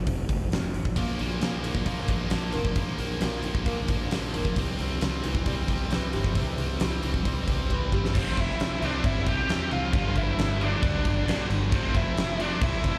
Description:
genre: quiet-loud alternative rock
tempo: 134 BPM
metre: 4/4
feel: straight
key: unclear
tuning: A4 = 443 Hz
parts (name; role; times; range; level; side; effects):
- fuzz fingered electric bass; bass; 0.0-13.0 s; F1 to G2; -32 LUFS; equal; overdrive
- huge arena drum kit; drums; 0.1-12.9 s; crash cymbal, hi-hat, kick drum, snare drum; -30 LUFS; equal; none
- picked acoustic archtop guitar; arpeggios; 1.0-8.2 s; Bb2 to D4; -38 LUFS; equal; none
- scooped high-gain guitar; riff; 1.0-13.0 s; F2 to C4; -36 LUFS; equal; distortion
- overdriven electric guitar; riff; 8.1-13.0 s; F2 to C4; -36 LUFS; equal; slapback echo
- octave-fuzz lead guitar; melody; 8.2-13.0 s; C4 to G4; -33 LUFS; equal; distortion, slapback echo, analog delay
room: small room ambience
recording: live gig heard through the venue's PA, club reverb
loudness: -27 LUFS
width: mono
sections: 0.0-8.1 A section; 8.1-13.0 B section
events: drum fill 7.7-8.1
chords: 0.0 F; 1.0 Bb; 4.6 C; 8.1 F5; 8.8 C; 9.9 G5; 11.7 F5

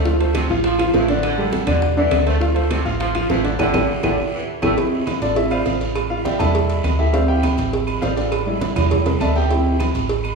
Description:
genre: latin, salsa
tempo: 203 BPM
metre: 4/4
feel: straight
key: D minor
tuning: A4 = 439 Hz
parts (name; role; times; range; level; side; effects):
- clear grand piano; accompaniment; 0.0-9.9 s; D3 to A5; -20 LUFS; left 1 dB; none
- vintage muted fingered electric bass; bass; 0.0-10.3 s; A1 to E2; -22 LUFS; right 2 dB; none
- guiro; percussion; 0.0-10.3 s; none; -37 LUFS; right 3 dB; none
- bongos and cowbell; percussion; 0.1-10.2 s; none; -29 LUFS; right 2 dB; none
- congas; percussion; 0.1-10.3 s; none; -28 LUFS; right 2 dB; none
- timbales and agogo bells; percussion; 0.2-10.3 s; none; -27 LUFS; right 4 dB; none
- bright saxophone section; second line; 0.3-4.7 s; C3 to A3; -27 LUFS; right 2 dB; none
- claves; percussion; 0.3-10.3 s; none; -34 LUFS; right 2 dB; none
room: wet recital hall reverb, RT60 1.5 s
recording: recorded in a church or concert hall, small room ambience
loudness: -16 LUFS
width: side -4 dB against mid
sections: 0.0-4.8 A section; 4.8-10.3 B section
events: band accent 3.6-4.8; drum fill 4.0-4.8, 8.8-9.5; grand piano solo 4.8-10.3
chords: 0.1 Dm7; 1.2 A7sus4; 2.4 Dm7; 3.6 A7sus4; 4.8 Dm7; 6.0 A7sus4; 7.1 Dm7; 8.3 A7sus4; 9.5 Dm7

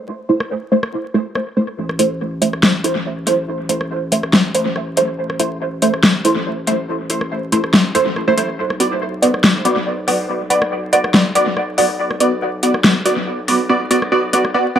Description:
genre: deep dubstep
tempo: 141 BPM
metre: 4/4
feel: swing 54% on 16ths, half-time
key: A dorian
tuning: A4 = 441 Hz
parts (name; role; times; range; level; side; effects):
- filtered dub chord stab; stabs; 0.3-14.8 s; A3 to D5; -16 LUFS; right 1 dB; phaser, wide subtle chorus, cassette tape, dub echo
- dubstep drum kit; drums; 0.4-14.5 s; hi-hat, rim click, snare drum; -16 LUFS; left 1 dB; low-pass filter on snare, low-pass filter on hats, analog delay
- saturated sub bass; bass; 1.8-14.5 s; A1 to B1; -28 LUFS; left 1 dB; high-pass filter
room: wet spring reverb, RT60 1.2 s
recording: echo-heavy mix, vinyl crackle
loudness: -14 LUFS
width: side -9 dB against mid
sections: 0.0-1.8 A section; 1.8-14.8 B section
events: build-up 1.8-14.8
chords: 0.0 Am; 8.6 Bm

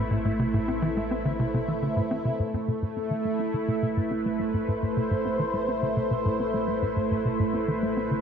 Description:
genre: ambient, sequencer-driven space music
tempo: 105 BPM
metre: 4/4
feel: straight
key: A minor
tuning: A4 = 440 Hz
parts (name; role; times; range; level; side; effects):
- lush unison pad; sustained chords; 0.0-8.2 s; A3 to C5; -27 LUFS; right 1 dB; chorus, phaser
- tight sequencer bass; riff; 0.0-8.2 s; A2 to C4; -28 LUFS; equal; ping-pong delay
- analog drone; bass; 0.0-8.2 s; A1; -42 LUFS; equal; chorus
- bubbling stepped-filter texture; texture; 3.6-8.2 s; E5; -47 LUFS; right 6 dB; none
room: wet lush hall reverb, RT60 2.4 s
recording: dreamy mix soaked in reverb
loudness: -24 LUFS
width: side -7 dB against mid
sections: 0.0-2.4 A section; 2.4-8.2 B section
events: filter sweep on analog synth bass 2.4-8.2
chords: 0.0 Am

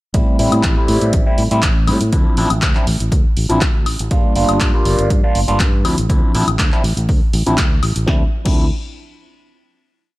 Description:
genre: filtered disco house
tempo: 121 BPM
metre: 4/4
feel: straight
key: D minor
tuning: A4 = 440 Hz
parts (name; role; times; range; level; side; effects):
- overdriven tine electric piano; accompaniment; 0.1-8.6 s; F3 to F4; -19 LUFS; equal; phaser, vintage 12-bit sampler grit, sidechain pumping
- fingered electric bass; bass; 0.1-8.7 s; G1 to A2; -19 LUFS; equal; sidechain pumping
- electronic kick drum; drums; 0.1-8.6 s; none; -16 LUFS; equal; studio reverb
- punchy analog drum machine; drums; 0.1-8.6 s; crash cymbal, handclaps, hi-hat, snare drum, woodblock; -22 LUFS; left 1 dB; sidechain pumping on hats, studio reverb, sidechain pumping on perc, sidechain pumping on cymbals
room: little or no reverb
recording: none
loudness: -13 LUFS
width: side -18 dB against mid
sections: 0.1-8.1 drop; 8.1-10.1 final chord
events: drop 0.1-8.1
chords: 0.1 Am7; 2.1 Dm9; 4.1 Gm7; 5.8 Dm9

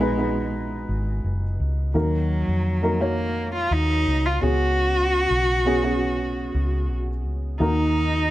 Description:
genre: piano-driven pop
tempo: 85 BPM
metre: 4/4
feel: straight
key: unclear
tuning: A4 = 439 Hz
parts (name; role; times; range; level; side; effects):
- dark cello; melody; 0.0-8.3 s; F#3 to F#4; -24 LUFS; equal; plate reverb
- dark upright piano; accompaniment; 0.0-8.3 s; G#2 to D#5; -26 LUFS; equal; plate reverb
- vintage muted fingered electric bass; bass; 0.0-8.3 s; F#1 to E#2; -24 LUFS; equal; none
room: light reverb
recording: none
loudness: -20 LUFS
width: side -15 dB against mid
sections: 0.0-7.6 A section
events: none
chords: 0.0 G#m; 1.9 D#m; 4.4 C#7sus4; 7.6 D#m

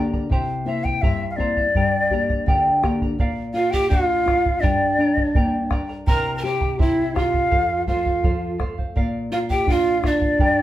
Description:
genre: andean folk, Andean ensemble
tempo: 83 BPM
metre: 2/4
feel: straight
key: unclear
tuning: A4 = 440 Hz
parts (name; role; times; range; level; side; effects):
- charango; accompaniment; 0.0-10.6 s; E4 to Bb5; -27 LUFS; right 1 dB; none
- nylon-string guitar; accompaniment; 0.0-10.6 s; F2 to G4; -26 LUFS; left 2 dB; none
- bombo; percussion; 0.1-10.6 s; none; -23 LUFS; right 1 dB; none
- bright large quena; melody; 0.7-10.6 s; D5 to Bb5; -22 LUFS; left 2 dB; none
- breathy bright pan flute; second line; 3.6-10.6 s; D4 to Bb4; -23 LUFS; right 4 dB; none
room: wet studio reverb, RT60 0.6 s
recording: heard from further back in the room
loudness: -18 LUFS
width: side -14 dB against mid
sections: 0.0-3.2 A section; 3.2-10.6 A section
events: none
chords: 0.3 C7; 1.7 Gm; 3.2 Bb; 4.6 Gm; 6.1 C7; 7.5 F; 9.0 Bb

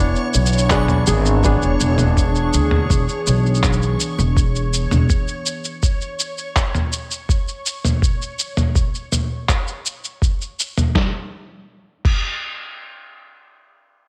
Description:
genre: folktronica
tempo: 82 BPM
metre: 4/4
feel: straight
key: unclear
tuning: A4 = 439 Hz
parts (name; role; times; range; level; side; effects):
- warbly tape-like pad; sustained chords; 0.0-5.1 s; E3 to G#4; -27 LUFS; equal; chorus, built-in reverb
- kora; arpeggios; 0.0-3.3 s; E3 to G#4; -26 LUFS; equal; digital delay
- upright bass; bass; 0.0-5.1 s; E1 to D2; -20 LUFS; equal; tube saturation
- backwards swelling texture; texture; 0.0-8.0 s; C#5 to C#6; -32 LUFS; equal; built-in reverb
- lo-fi sampler-style drum kit; drums; 0.2-12.3 s; crash cymbal, handclaps, shaker, snare drum, toms; -24 LUFS; equal; none
- electronic kick drum; drums; 0.7-12.3 s; none; -21 LUFS; equal; none
room: light reverb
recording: none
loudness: -19 LUFS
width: mono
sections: 0.0-10.9 A section; 10.9-13.9 B section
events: none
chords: 0.0 E7; 5.1 N.C.

